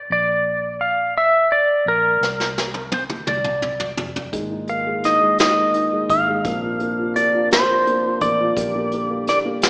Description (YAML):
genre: six-eight pop ballad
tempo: 57 BPM (dotted quarters)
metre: 6/8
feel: straight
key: unclear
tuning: A4 = 440 Hz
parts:
  - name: vintage muted fingered electric bass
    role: bass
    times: 0.0-9.7 s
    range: F1 to C2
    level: -34 LUFS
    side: equal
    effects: none
  - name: clean lap steel guitar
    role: melody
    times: 0.1-9.7 s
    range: G4 to F5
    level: -18 LUFS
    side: equal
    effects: none
  - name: vintage brush drum kit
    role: drums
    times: 2.2-9.7 s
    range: hi-hat, kick drum, snare drum, toms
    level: -23 LUFS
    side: equal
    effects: none
  - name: dark upright piano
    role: accompaniment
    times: 4.3-9.7 s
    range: Ab3 to Bb4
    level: -25 LUFS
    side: equal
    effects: none
  - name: tonewheel organ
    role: sustained chords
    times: 4.3-9.7 s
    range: Bb2 to G4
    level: -28 LUFS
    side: equal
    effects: stopped rotary speaker
room: moderate concert hall reverb, RT60 1.9 s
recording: recorded in a church or concert hall, small speaker sound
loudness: -17 LUFS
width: side -30 dB against mid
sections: 0.0-9.7 A section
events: drum fill 2.2-4.3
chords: 0.1 Bb; 2.2 Bbsus2/C; 3.3 Csus2; 4.3 Absus2; 6.4 Bbadd9; 8.6 Gm/Bb